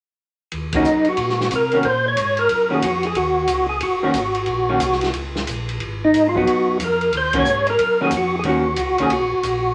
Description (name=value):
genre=soul jazz organ trio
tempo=182 BPM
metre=4/4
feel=swing 64% on 8ths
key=Eb dorian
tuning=A4 = 440 Hz
part: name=mellow tonewheel organ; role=bass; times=0.5-9.7 s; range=Gb1 to C3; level=-31 LUFS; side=equal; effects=overdrive, chorus vibrato, slow rotary speaker
part: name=open jazz drum kit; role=drums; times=0.5-9.5 s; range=hi-hat, kick drum, ride cymbal, snare drum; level=-30 LUFS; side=equal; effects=none
part: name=vintage hollow-body jazz guitar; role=accompaniment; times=0.7-9.1 s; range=Eb3 to Gb4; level=-24 LUFS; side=equal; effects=none
part: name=percussive tonewheel organ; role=melody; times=0.8-9.7 s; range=Eb4 to Db5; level=-20 LUFS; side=equal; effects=slow rotary speaker, overdrive, chorus vibrato
room=wet small room ambience, RT60 0.5 s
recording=none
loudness=-19 LUFS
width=mono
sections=0.5-9.7 A section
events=band accent 0.7, 7.3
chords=0.5 Ebm7; 5.8 Abm7; 7.1 Ebm7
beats=| 0.52 0.85 1.18 1.51 | 1.84 2.17 2.50 2.83 | 3.16 3.49 3.82 4.15 | 4.48 4.81 5.14 5.47 | 5.80 6.13 6.46 6.79 | 7.12 7.45 7.78 8.11 | 8.44 8.77 9.10 9.43